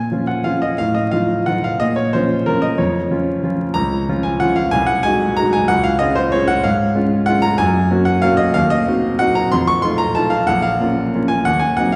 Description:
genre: classical, piano waltz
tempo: 170-200 BPM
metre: 3/4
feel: rubato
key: Bb minor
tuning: A4 = 437 Hz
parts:
  - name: warm baby grand piano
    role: solo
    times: 0.0-12.0 s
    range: Bb1 to Db6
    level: -17 LUFS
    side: equal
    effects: none
room: wet recital hall reverb, RT60 1.7 s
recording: heard from further back in the room, vinyl crackle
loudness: -17 LUFS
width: mono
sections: 0.0-12.0 A section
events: none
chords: 0.0 Bbm; 0.8 F7/A; 1.8 Bbm; 3.7 Db; 4.7 Ab7/C; 5.7 Db; 7.6 Gb; 8.5 Cdim/Eb; 9.5 F7; 10.5 Bbm; 11.5 Cdim/Eb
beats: 0.11 0.46 | 0.79 1.12 1.47 | 1.80 2.14 2.47 | 2.79 3.10 3.43 | 3.75 4.08 4.41 | 4.74 5.05 5.38 | 5.69 6.01 6.33 | 6.65 6.95 7.28 | 7.59 7.91 8.23 | 8.55 8.87 9.20 | 9.52 9.83 10.14 | 10.46 10.79 11.12 | 11.45 11.77

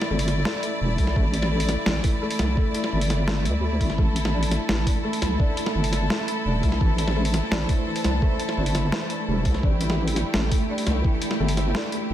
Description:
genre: half-time drum and bass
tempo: 170 BPM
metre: 4/4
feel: half-time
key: unclear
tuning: A4 = 440 Hz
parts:
  - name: rich studio string section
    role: sustained chords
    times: 0.0-12.1 s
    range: A3 to D5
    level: -30 LUFS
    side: equal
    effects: sidechain pumping
  - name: felt-muted upright piano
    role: arpeggios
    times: 0.0-12.1 s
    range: E3 to A4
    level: -30 LUFS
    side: left 2 dB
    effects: tape echo
  - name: boom bap sampler-style drum kit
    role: drums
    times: 0.0-12.0 s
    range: hi-hat, snare drum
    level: -29 LUFS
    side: equal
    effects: none
  - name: deep soft wobble bass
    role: bass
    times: 0.1-12.1 s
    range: E1 to D2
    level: -24 LUFS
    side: equal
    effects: chorus
  - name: electronic kick drum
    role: drums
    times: 1.0-11.1 s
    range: none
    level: -23 LUFS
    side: equal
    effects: none
  - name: pulsing gated texture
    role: texture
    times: 4.0-12.1 s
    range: A3 to C5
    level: -33 LUFS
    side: right 3 dB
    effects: chorus, built-in reverb
room: light reverb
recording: echo-heavy mix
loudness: -21 LUFS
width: side -12 dB against mid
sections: 0.0-12.1 A section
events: none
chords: 0.0 A5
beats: 0.10 0.46 0.81 | 1.16 1.51 1.87 2.22 | 2.57 2.93 3.28 3.63 | 3.98 4.34 4.69 5.04 | 5.40 5.75 6.10 6.46 | 6.81 7.16 7.51 7.87 | 8.22 8.57 8.93 9.28 | 9.63 9.98 10.34 10.69 | 11.04 11.40 11.75 12.10

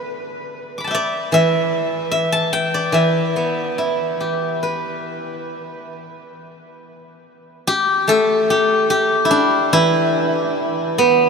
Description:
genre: chinese traditional, Chinese solo plucked strings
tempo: 66-76 BPM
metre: 4/4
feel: rubato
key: E yu mode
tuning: A4 = 439 Hz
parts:
  - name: steel-string zither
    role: solo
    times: 0.0-11.3 s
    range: E3 to D6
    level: -16 LUFS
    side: equal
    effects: none
room: wet huge ambient reverb, RT60 7.7 s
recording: in a vast, echoing space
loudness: -16 LUFS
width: side -5 dB against mid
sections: 0.0-6.4 A section; 6.4-11.3 B section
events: none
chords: none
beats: 0.54 1.34 2.14 | 2.95 3.78 4.63 5.53 | 6.40 7.25 8.10 8.92 | 9.75 10.59

